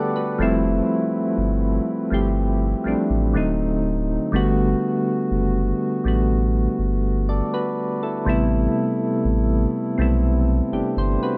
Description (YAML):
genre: contemporary R&B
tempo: 61 BPM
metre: 4/4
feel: straight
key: G major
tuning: A4 = 440 Hz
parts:
  - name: soft electric-piano-like synth keys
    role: accompaniment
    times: 0.0-11.4 s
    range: C3 to F#5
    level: -23 LUFS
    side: equal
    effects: chorus, tremolo
  - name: saturated sub bass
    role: bass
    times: 0.4-11.2 s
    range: D1 to B1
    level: -24 LUFS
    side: equal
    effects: none
room: light reverb, digital ambience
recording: none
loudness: -21 LUFS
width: mono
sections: 0.0-11.4 A section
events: none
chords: 0.4 Fmaj7; 3.3 D7b9; 4.3 Gmaj9; 8.3 Am9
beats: | 0.40 1.38 2.36 3.35 | 4.33 5.31 6.30 7.28 | 8.26 9.25 10.23 11.21